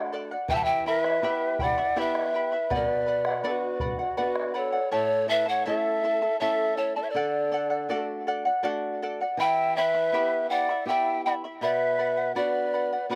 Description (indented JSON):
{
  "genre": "andean folk, Andean ensemble",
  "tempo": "81 BPM",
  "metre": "3/4",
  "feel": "straight",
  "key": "unclear",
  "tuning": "A4 = 438 Hz",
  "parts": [
    { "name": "charango", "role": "accompaniment", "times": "0.0-13.2 s", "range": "E4 to B5", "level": "-33 LUFS", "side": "equal", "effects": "slapback echo" },
    { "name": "flamenco guitar", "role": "accompaniment", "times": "0.0-13.2 s", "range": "A2 to G4", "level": "-38 LUFS", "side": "equal", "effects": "slapback echo" },
    { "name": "breathy mellow polished pan flute", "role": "melody", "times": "0.5-13.2 s", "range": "B4 to A5", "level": "-28 LUFS", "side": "equal", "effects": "slapback echo" },
    { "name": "breathy large quena", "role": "second line", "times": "0.5-13.2 s", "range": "F#4 to F#5", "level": "-34 LUFS", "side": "equal", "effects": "slapback echo" },
    { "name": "bombo", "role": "percussion", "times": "0.5-4.8 s", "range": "none", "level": "-38 LUFS", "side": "equal", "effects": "slapback echo" }
  ],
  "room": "little or no reverb",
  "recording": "recorded outdoors, with no room sound",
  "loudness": "-26 LUFS",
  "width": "mono",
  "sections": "0.0-4.9 A section; 4.9-13.2 A section",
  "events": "none",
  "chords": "0.5 Em; 2.7 Bm; 4.9 A; 7.1 D; 9.4 Em; 11.6 Bm"
}